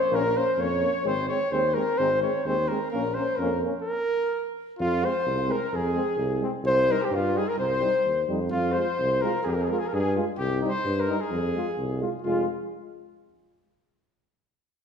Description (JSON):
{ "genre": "balkan folk", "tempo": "129 BPM", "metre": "2/4", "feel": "swing 55% on 16ths", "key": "Bb minor, F minor from 4.8 s", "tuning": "A4 = 440 Hz", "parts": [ { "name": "mellow flugelhorn", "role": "melody", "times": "0.0-12.5 s", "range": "F4 to Db5", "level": "-27 LUFS", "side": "equal", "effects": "none" }, { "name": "warm trumpet", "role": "second line", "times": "0.0-12.4 s", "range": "F4 to Db5", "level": "-30 LUFS", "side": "left 2 dB", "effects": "none" }, { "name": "clear trombone", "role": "accompaniment", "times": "0.1-12.5 s", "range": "C4 to F4", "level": "-34 LUFS", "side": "left 5 dB", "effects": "none" }, { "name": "warm euphonium", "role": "accompaniment", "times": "0.1-12.5 s", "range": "G3 to Bb3", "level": "-34 LUFS", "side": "right 5 dB", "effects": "none" }, { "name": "warm tuba", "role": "bass", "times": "0.1-12.5 s", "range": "F1 to G2", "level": "-29 LUFS", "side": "equal", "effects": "none" } ], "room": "wet recital hall reverb, RT60 1.6 s", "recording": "recorded in a church or concert hall", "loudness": "-23 LUFS", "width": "side -7 dB against mid", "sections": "0.0-4.8 A section; 4.8-12.2 B section", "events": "none", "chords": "0.0 Bbm; 1.1 Ab; 2.9 Bbm; 4.8 Fm; 6.6 Cm; 8.5 Fm; 10.4 Cm; 11.3 Fm", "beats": "| 0.12 0.59 | 1.05 1.52 | 1.99 2.45 | 2.92 3.38 | 3.85 4.32 | 4.78 5.25 | 5.71 6.18 | 6.65 7.11 | 7.58 8.05 | 8.51 8.98 | 9.45 9.91 | 10.38 10.85 | 11.31 11.78 | 12.25" }